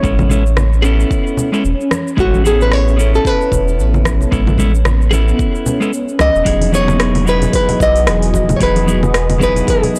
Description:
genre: sunset chillout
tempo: 112 BPM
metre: 4/4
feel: swing 57% on 16ths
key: E major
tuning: A4 = 439 Hz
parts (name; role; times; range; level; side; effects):
- nylon-string guitar; melody; 0.0-10.0 s; F#4 to D#5; -19 LUFS; equal; vintage 12-bit sampler grit, delay
- clean electric guitar; accompaniment; 0.0-10.0 s; F#3 to A4; -22 LUFS; equal; tape echo
- shimmering ambient pad; sustained chords; 0.0-10.0 s; E3 to D#5; -26 LUFS; equal; chorus, built-in reverb, phaser
- round analog bass; bass; 0.0-9.6 s; E1 to C#2; -17 LUFS; equal; transformer saturation
- electronic kick drum; drums; 0.0-9.8 s; none; -22 LUFS; equal; none
- smooth R&B drum kit; drums; 0.0-10.0 s; congas, hi-hat, rim click, shaker; -23 LUFS; equal; soft clipping on snare
- congas and bongos; percussion; 0.2-9.9 s; none; -25 LUFS; equal; none
room: light reverb, digital ambience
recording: blown-out, overdriven recording, overdrive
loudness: -14 LUFS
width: mono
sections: 0.0-6.5 A section; 6.5-10.0 B section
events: none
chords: 0.0 Amaj9; 6.5 Emaj9

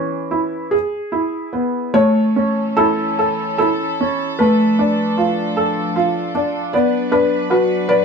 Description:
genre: children's music, lullaby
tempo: 49-52 BPM (dotted quarters)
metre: 6/8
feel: rubato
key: unclear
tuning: A4 = 439 Hz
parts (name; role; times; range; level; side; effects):
- felt-muted upright piano; melody; 0.0-8.0 s; E3 to D5; -16 LUFS; equal; none
- warm studio string section; sustained chords; 2.0-8.0 s; A2 to B4; -25 LUFS; equal; none
room: wet studio reverb, RT60 0.7 s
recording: band playing live in one room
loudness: -15 LUFS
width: side -5 dB against mid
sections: 0.0-2.0 A section; 2.0-8.0 A section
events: none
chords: 0.0 C#m/E; 0.7 E; 2.0 A; 4.4 Dm/A; 6.7 Bm

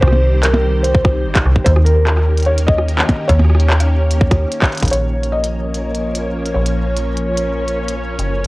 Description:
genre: IDM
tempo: 147 BPM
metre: 4/4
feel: straight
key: unclear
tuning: A4 = 439 Hz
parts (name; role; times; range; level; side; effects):
- felt-muted upright piano; melody; 0.0-7.9 s; Bb4 to Eb5; -21 LUFS; equal; digital delay
- soft string machine; sustained chords; 0.0-8.5 s; Eb3 to Db5; -23 LUFS; equal; ensemble chorus, sidechain pumping
- metallic FM bass; bass; 0.0-8.5 s; Gb1 to Eb2; -15 LUFS; equal; none
- electronic kick drum; drums; 0.0-4.9 s; none; -14 LUFS; equal; small room reverb
- glitchy drum kit; drums; 0.1-8.5 s; handclaps, hi-hat, percussion blips, rim click; -20 LUFS; equal; small room reverb
- bubbling stepped-filter texture; texture; 5.5-8.5 s; Db4 to Db5; -30 LUFS; equal; chorus, built-in reverb, sidechain pumping
room: light reverb, digital ambience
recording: worn, warbling old tape, cassette tape, warbly pitch drift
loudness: -13 LUFS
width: side -21 dB against mid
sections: 0.0-4.9 A section; 4.9-8.5 B section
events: band accent 4.6; drum fill 4.7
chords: 0.0 Cm; 1.7 Eb7; 4.9 Bbm

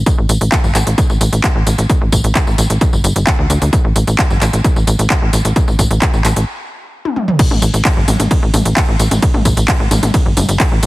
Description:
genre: driving peak-time techno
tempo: 131 BPM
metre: 4/4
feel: straight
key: unclear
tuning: A4 = 440 Hz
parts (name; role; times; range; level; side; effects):
- tight sequencer bass; bass; 0.0-10.9 s; G1 to D2; -14 LUFS; equal; tube saturation, sidechain pumping
- electronic kick drum; drums; 0.1-10.7 s; none; -14 LUFS; equal; none
- techno drum kit; drums; 0.1-10.9 s; crash cymbal, handclaps, hi-hat, ride cymbal, tambourine, toms; -18 LUFS; equal; none
room: little or no reverb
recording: heavily compressed radio sound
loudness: -11 LUFS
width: side -19 dB against mid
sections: 0.0-7.4 A section; 7.4-10.9 B section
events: stop 6.5-7.4; drum fill 7.0-7.4; drop 7.4-10.9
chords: none

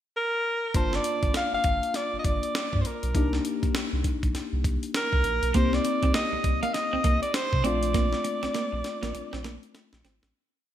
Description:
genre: R&B, new jack swing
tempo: 100 BPM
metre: 4/4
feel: swing 61% on 16ths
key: G minor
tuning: A4 = 440 Hz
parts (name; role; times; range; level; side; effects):
- clear alto saxophone; melody; 0.2-9.7 s; Bb4 to F5; -28 LUFS; right 1 dB; none
- mellow tine electric piano; accompaniment; 0.7-10.4 s; A3 to A5; -32 LUFS; left 5 dB; phaser
- round analog bass; bass; 0.7-10.3 s; G1 to C3; -29 LUFS; equal; none
- breakbeat sampler-style drum kit; drums; 0.7-10.3 s; hi-hat, kick drum, snare drum; -29 LUFS; equal; gated reverb
- electric guitar at the edge of break-up; riff; 5.5-10.2 s; Bb3 to C4; -33 LUFS; right 5 dB; lush chorus
room: moderate lush hall reverb, RT60 1.7 s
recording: bright 1980s-style digital production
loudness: -24 LUFS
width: side -11 dB against mid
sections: 0.0-0.7 pickup bar; 0.7-10.3 verse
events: fade-out 7.9-10.3; drum fill 7.9-10.3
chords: 0.0 N.C.; 0.7 Gm9; 3.1 Cm9; 7.6 Bbmaj9

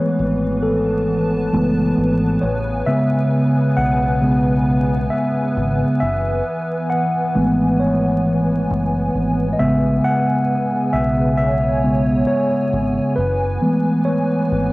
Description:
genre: hip hop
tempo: 67 BPM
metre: 4/4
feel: swing 65% on 16ths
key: F# minor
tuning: A4 = 440 Hz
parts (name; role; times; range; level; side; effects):
- mellow tine electric piano; accompaniment; 0.0-14.7 s; C#3 to F#5; -17 LUFS; equal; medium stereo tremolo, cassette tape, low-pass filter
- hollow soft pad; sustained chords; 0.0-14.7 s; C#3 to A5; -23 LUFS; equal; ensemble chorus, low-pass filter
- deep dub fingered electric bass; bass; 0.2-14.7 s; F#1 to B1; -24 LUFS; equal; tube saturation
room: light reverb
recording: home recording on cassette, vinyl crackle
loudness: -16 LUFS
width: side -20 dB against mid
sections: 0.0-14.7 A section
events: tine electric piano solo 0.0-14.7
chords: 0.0 F#m11; 2.4 Amaj9 (rootless); 6.0 F#m11; 9.6 Amaj9 (rootless); 13.2 F#m11

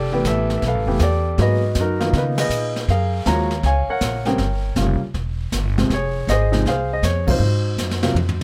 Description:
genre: jazz piano trio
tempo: 159 BPM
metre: 4/4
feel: swing 66% on 8ths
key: unclear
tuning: A4 = 437 Hz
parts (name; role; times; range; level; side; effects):
- warm baby grand piano; melody; 0.0-8.4 s; C3 to Bb5; -23 LUFS; equal; none
- upright bass; bass; 0.0-8.4 s; E1 to Db3; -23 LUFS; equal; none
- jazz brush drum kit; drums; 0.2-8.4 s; brushed snare drum, hi-hat, kick drum, ride cymbal, snare drum, toms; -28 LUFS; equal; none
room: little or no reverb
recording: close, detailed microphones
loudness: -20 LUFS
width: mono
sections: 0.0-8.4 A section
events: band accent 2.3, 7.2; drum fill 7.8-8.4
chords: 0.0 Fmaj9#11; 1.4 Abm9; 2.1 Db13; 2.9 Gbmaj9; 4.4 Gm7b5; 5.1 C; 5.9 Fm7; 7.4 Ab13

